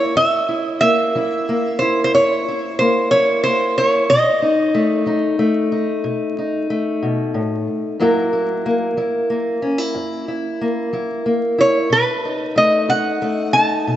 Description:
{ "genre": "acoustic country blues, solo or duo", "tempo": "61 BPM (dotted quarters)", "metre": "12/8", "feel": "straight", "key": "F# mixolydian", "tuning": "A4 = 440 Hz", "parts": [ { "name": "lap resonator guitar", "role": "melody", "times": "0.0-5.0, 11.6-14.0 s", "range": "B4 to A5", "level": "-16 LUFS", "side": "right 1 dB", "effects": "none" }, { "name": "fingerpicked steel-string acoustic guitar", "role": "accompaniment", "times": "0.0-14.0 s", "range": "F#2 to A#4", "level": "-19 LUFS", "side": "left 1 dB", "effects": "none" } ], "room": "wet plate reverb, RT60 3.3 s", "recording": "dreamy mix soaked in reverb, vinyl crackle, nothing above 8.0 kHz", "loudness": "-16 LUFS", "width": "side -12 dB against mid", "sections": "0.0-14.0 A section", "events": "none", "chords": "0.0 F#7; 4.1 B7; 8.0 F#7; 11.9 B7" }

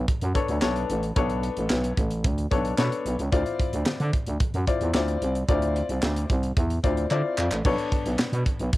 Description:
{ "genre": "early-eighties boogie funk", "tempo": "111 BPM", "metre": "4/4", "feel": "straight", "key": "unclear", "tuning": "A4 = 440 Hz", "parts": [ { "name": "growling FM bass", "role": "bass", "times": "0.0-8.7 s", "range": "A1 to D3", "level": "-26 LUFS", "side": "right 1 dB", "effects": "none" }, { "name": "tight funk drum kit", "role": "drums", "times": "0.1-8.8 s", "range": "crash cymbal, handclaps, hi-hat, kick drum, snare drum", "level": "-26 LUFS", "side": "right 1 dB", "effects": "cassette tape" }, { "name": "clear baby grand piano", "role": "accompaniment", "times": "0.3-8.5 s", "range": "B3 to D5", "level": "-28 LUFS", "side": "left 4 dB", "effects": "cassette tape" } ], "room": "light reverb, small room ambience", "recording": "home recording on cassette", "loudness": "-22 LUFS", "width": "side -17 dB against mid", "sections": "0.0-8.8 A section", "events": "drum fill 7.1-7.6", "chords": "0.0 Bm9; 3.3 Dm9; 7.6 Bm9" }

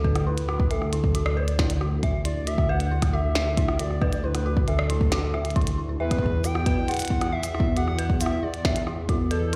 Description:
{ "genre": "IDM", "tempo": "136 BPM", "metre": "4/4", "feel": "straight", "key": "unclear", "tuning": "A4 = 440 Hz", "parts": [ { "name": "warbly nostalgic lead", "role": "melody", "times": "0.0-9.6 s", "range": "A4 to G5", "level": "-34 LUFS", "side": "equal", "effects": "chorus, delay" }, { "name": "dark detuned synth bell", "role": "arpeggios", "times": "0.0-9.6 s", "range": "E4 to E5", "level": "-35 LUFS", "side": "equal", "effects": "chorus, phaser, vintage 12-bit sampler grit, dub echo" }, { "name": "dark detuned saw bass", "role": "bass", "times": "0.0-9.6 s", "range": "D2 to E2", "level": "-28 LUFS", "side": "equal", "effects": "none" }, { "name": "electronic kick drum", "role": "drums", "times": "0.0-9.2 s", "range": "none", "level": "-27 LUFS", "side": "equal", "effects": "none" }, { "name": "glitchy drum kit", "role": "drums", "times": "0.2-9.6 s", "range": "hi-hat, rim click, shaker, snare drum", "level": "-34 LUFS", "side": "equal", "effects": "none" } ], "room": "digital ambience", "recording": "played on a big sound system in a bare room, large studio reverb", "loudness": "-24 LUFS", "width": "mono", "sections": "0.0-9.6 A section", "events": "none", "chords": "0.0 Dsus2; 6.0 N.C." }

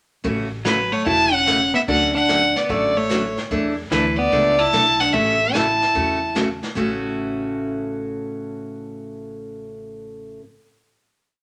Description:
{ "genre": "country, western swing", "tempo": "148 BPM", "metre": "4/4", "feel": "swing 66% on 8ths", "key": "A major", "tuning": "A4 = 440 Hz", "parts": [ { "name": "picked steel-string acoustic guitar", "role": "accompaniment", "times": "0.2-10.4 s", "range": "A2 to A4", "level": "-28 LUFS", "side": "equal", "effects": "none" }, { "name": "upright bass", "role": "bass", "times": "0.2-10.4 s", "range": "E1 to E2", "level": "-33 LUFS", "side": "equal", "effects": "none" }, { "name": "jazz brush drum kit", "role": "drums", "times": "0.2-7.1 s", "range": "brushed snare drum, hi-hat, kick drum, snare drum", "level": "-33 LUFS", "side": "equal", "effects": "none" }, { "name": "clear fiddle", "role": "melody", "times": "0.6-6.4 s", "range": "B4 to A5", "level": "-20 LUFS", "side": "equal", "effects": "none" }, { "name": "hollow-body jazz guitar", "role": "second line", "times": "0.7-6.4 s", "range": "E3 to E4", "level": "-26 LUFS", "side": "equal", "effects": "none" } ], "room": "wet studio reverb, RT60 0.9 s", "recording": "none", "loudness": "-20 LUFS", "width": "mono", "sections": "0.2-6.8 A section; 6.8-10.0 final chord", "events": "none", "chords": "0.2 A6; 1.9 Dmaj7; 3.5 E7sus4; 5.1 A6" }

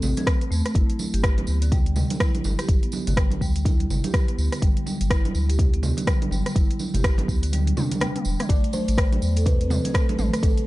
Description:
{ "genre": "afro house", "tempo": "124 BPM", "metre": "4/4", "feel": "swing 60% on 16ths", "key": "unclear", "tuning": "A4 = 439 Hz", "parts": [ { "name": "round analog bass", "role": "bass", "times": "0.0-10.5 s", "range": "E1 to E2", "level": "-24 LUFS", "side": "equal", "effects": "tube saturation, sidechain pumping" }, { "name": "congas", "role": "percussion", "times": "0.0-10.5 s", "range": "none", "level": "-30 LUFS", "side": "right 4 dB", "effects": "none" }, { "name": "tambourine", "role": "percussion", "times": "0.0-10.5 s", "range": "none", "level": "-39 LUFS", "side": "right 3 dB", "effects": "none" }, { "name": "marimba with soft mallets", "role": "arpeggios", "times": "0.2-10.6 s", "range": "D3 to A4", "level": "-29 LUFS", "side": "equal", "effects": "sidechain pumping, digital delay" }, { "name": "deep house drum kit", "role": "drums", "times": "0.2-10.7 s", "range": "hi-hat, rim click, toms", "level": "-29 LUFS", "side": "equal", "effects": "overdrive" }, { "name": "electronic kick drum", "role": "drums", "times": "0.3-10.5 s", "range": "none", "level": "-21 LUFS", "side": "equal", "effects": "none" }, { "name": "buzzing kalimba", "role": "melody", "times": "8.5-10.7 s", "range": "A4 to D5", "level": "-31 LUFS", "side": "left 1 dB", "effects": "digital delay" } ], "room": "small room reverb", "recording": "dark, warm production, nothing above 10.6 kHz", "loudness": "-20 LUFS", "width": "side -18 dB against mid", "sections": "0.0-10.7 A section", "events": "kick drops out 7.5-8.5; drum fill 7.8-8.5", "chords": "0.0 A5; 0.8 G5; 8.5 Amadd9" }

